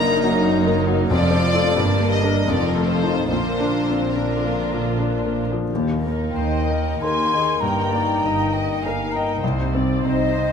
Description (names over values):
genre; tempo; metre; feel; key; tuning
classical, romantic movement for piano and orchestra; 70-102 BPM; 3/4; rubato; Bb major, Eb major from 5.7 s; A4 = 440 Hz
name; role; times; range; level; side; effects
clear grand piano; melody; 0.0-10.5 s; C2 to Eb5; -22 LUFS; left 4 dB; none
warm studio violin section; melody; 0.0-10.5 s; C4 to Bb5; -28 LUFS; left 2 dB; none
dark studio violin section; second line; 0.0-10.5 s; D4 to Ab5; -28 LUFS; left 2 dB; none
warm studio viola section; accompaniment; 0.0-10.5 s; D3 to Eb5; -28 LUFS; right 2 dB; none
dark studio cello section; bass; 0.0-10.5 s; Eb2 to C3; -28 LUFS; right 5 dB; none
dark studio double bass section; bass; 0.0-10.5 s; F1 to Eb2; -26 LUFS; right 4 dB; none
timpani; percussion; 1.1-1.7 s; F2; -29 LUFS; equal; none
mellow French horn section; sustained chords; 5.7-10.5 s; Bb3 to Eb4; -28 LUFS; left 5 dB; none
mellow silver concert flute; second line; 6.3-10.5 s; Eb5 to C6; -24 LUFS; left 1 dB; none
room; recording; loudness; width
moderate scoring stage reverb, RT60 1.7 s; close, detailed microphones; -18 LUFS; side -7 dB against mid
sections
0.0-5.7 A section; 5.7-10.5 B section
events
none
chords
0.0 Ebm/Gb; 1.1 F; 1.8 Gm; 2.5 F7; 3.3 Bb; 5.7 Eb; 7.6 Eb/G; 9.4 Cm